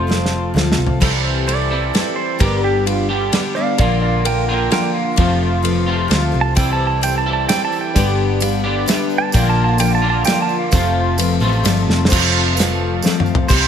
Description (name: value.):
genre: folk rock and heartland rock.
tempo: 130 BPM.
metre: 3/4.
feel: straight.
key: unclear.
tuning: A4 = 442 Hz.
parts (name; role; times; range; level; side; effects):
twangy electric guitar; melody; 0.0-0.5, 13.5-13.7 s; C5; -24 LUFS; equal; lush chorus.
picked twelve-string acoustic guitar; accompaniment; 0.0-13.7 s; G2 to B4; -22 LUFS; left 8 dB; none.
mellow tonewheel organ; sustained chords; 0.0-13.7 s; C4 to D6; -31 LUFS; equal; none.
electric guitar through a small old amp; riff; 0.0-13.5 s; F2 to A4; -21 LUFS; left 1 dB; analog chorus.
hollow-body short-scale picked electric bass; bass; 0.0-13.7 s; F1 to D2; -19 LUFS; equal; none.
dark baby grand piano; accompaniment; 0.1-13.7 s; C4 to F5; -30 LUFS; right 5 dB; none.
damped 70s drum kit; drums; 0.1-13.6 s; crash cymbal, hi-hat, kick drum, ride cymbal, snare drum, toms; -20 LUFS; right 1 dB; none.
pedal steel guitar; second line; 1.5-11.0 s; F4 to A5; -21 LUFS; right 6 dB; none.
tambourine; percussion; 6.6-13.6 s; none; -29 LUFS; right 8 dB; none.
room: moderate large studio reverb, RT60 1.2 s, studio ambience.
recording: none.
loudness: -14 LUFS.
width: side -8 dB against mid.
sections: 0.0-1.0 A section; 1.0-12.1 B section; 12.1-13.5 C section.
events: drum fill 0.1-1.0, 11.9, 13.0-13.5; pedal steel guitar solo 1.0-12.1.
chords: 0.0 F; 1.0 C6; 2.4 G; 3.8 Bb; 5.2 F; 6.6 C6; 8.0 G; 9.3 Bb; 10.7 F.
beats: 0.08 0.55 | 1.01 1.48 1.94 | 2.40 2.87 3.33 | 3.79 4.25 4.72 | 5.18 5.64 6.11 | 6.57 7.03 7.49 | 7.95 8.41 8.88 | 9.34 9.80 10.26 | 10.72 11.19 11.65 | 12.11 12.57 13.03 | 13.49.